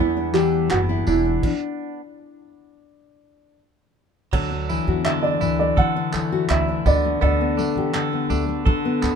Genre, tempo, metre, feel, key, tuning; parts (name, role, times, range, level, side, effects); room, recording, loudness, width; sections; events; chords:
acoustic pop; 83 BPM; 4/4; straight; D major; A4 = 440 Hz
dark upright piano; melody; 0.0-9.2 s; D4 to F#5; -23 LUFS; right 3 dB
nylon-string guitar; accompaniment; 0.0-9.2 s; E2 to G4; -23 LUFS; left 6 dB
reed electric piano; accompaniment; 0.0-1.4 s; barely audible
direct-recorded clean electric guitar; arpeggios; 0.0-9.2 s; F#3 to A4; -28 LUFS; right 8 dB
upright bass; bass; 0.0-9.2 s; E1 to D3; -25 LUFS; right 1 dB
cloth-damped thuddy drum kit; drums; 0.3-9.2 s; crash cymbal, handclaps, kick drum, tambourine; -25 LUFS; right 1 dB
little or no reverb; minimal, uncompressed stereo recording; -18 LUFS; side -6 dB against mid
0.0-4.3 A section; 4.3-9.2 B section
stop 1.4-4.3
0.0 Em7; 1.4 N.C.; 4.3 Dadd9; 6.9 Gadd9/D